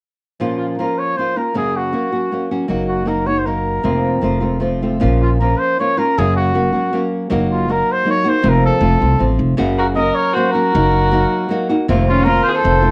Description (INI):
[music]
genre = mexican folk, mariachi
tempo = 158 BPM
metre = 3/4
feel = rubato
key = Bb minor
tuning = A4 = 440 Hz
[part]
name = nylon-string guitar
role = accompaniment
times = 0.4-12.9 s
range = F2 to Gb4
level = -21 LUFS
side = equal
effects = cassette tape
[part]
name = mellow trumpet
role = melody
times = 0.6-12.9 s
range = F4 to Eb5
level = -20 LUFS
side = equal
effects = cassette tape
[part]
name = upright bass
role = bass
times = 2.7-12.9 s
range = F1 to C2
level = -20 LUFS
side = equal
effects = none
[part]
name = dark violin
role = second line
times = 9.8-12.9 s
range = Db4 to Bb4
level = -22 LUFS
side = equal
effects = cassette tape
[sound]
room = moderate studio reverb, RT60 0.6 s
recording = home recording on cassette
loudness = -17 LUFS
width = mono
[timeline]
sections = 0.4-5.0 A section; 5.0-12.9 B section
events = none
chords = 0.4 Bbm; 1.6 Gb; 2.7 Ebm/Gb; 3.8 Fsus4; 4.2 F; 5.0 Bbm; 6.2 Gb; 7.3 Ebm/Gb; 8.4 Fsus4; 8.8 F; 9.6 Gb; 10.7 Ebm/Gb; 11.9 F7sus4